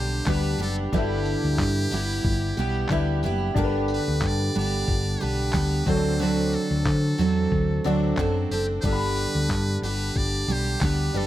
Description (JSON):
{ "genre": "acoustic pop", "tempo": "91 BPM", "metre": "4/4", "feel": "swing 55% on 16ths", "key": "G major", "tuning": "A4 = 440 Hz", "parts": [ { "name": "trumpet with metal mute", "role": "melody", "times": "0.0-11.3 s", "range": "G4 to D5", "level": "-31 LUFS", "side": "equal", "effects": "none" }, { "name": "picked twelve-string acoustic guitar", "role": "accompaniment", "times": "0.0-11.3 s", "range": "G2 to A4", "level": "-26 LUFS", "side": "right 3 dB", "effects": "none" }, { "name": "warm grand piano", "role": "accompaniment", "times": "0.0-11.3 s", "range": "C4 to B5", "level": "-33 LUFS", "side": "left 6 dB", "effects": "none" }, { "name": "hollow-body short-scale fingered electric bass", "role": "bass", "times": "0.0-11.3 s", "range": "F#1 to D3", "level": "-26 LUFS", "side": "left 1 dB", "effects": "none" }, { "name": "dusty soul sampler-style drum kit", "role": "drums", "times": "0.3-11.3 s", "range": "handclaps, kick drum, tambourine", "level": "-28 LUFS", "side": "left 1 dB", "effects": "none" } ], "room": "little or no reverb", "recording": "close, detailed microphones", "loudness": "-22 LUFS", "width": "side -13 dB against mid", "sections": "0.0-11.3 A section", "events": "none", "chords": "0.0 G; 0.9 Em7/G; 3.6 G; 5.9 D7; 8.8 G" }